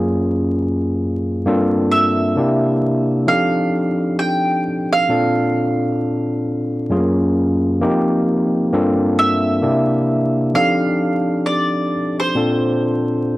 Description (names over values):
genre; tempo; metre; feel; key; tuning
R&B; 66 BPM; 4/4; swing 63% on 16ths; Bb major; A4 = 440 Hz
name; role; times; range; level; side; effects
mandolin; melody; 0.0-13.4 s; C5 to G5; -20 LUFS; right 2 dB; none
overdriven tine electric piano; accompaniment; 0.0-13.4 s; Gb2 to A4; -16 LUFS; equal; none
room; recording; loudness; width
light reverb, small room ambience; dry, close 1970s-style studio recording, vinyl crackle; -15 LUFS; side -18 dB against mid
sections
0.0-8.7 A section; 8.7-13.4 A section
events
none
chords
0.0 Gbmaj9; 1.4 Gm11; 2.4 C7; 3.3 F13; 5.1 Bbmaj9; 6.9 Gbmaj9; 7.8 F9sus4; 8.7 Gm11; 9.6 C7; 10.5 F13; 12.4 Bbmaj9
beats
0.54 | 1.45 2.36 3.27 4.17 | 5.08 5.99 6.90 7.81 | 8.72 9.63 10.54 11.45 | 12.36 13.27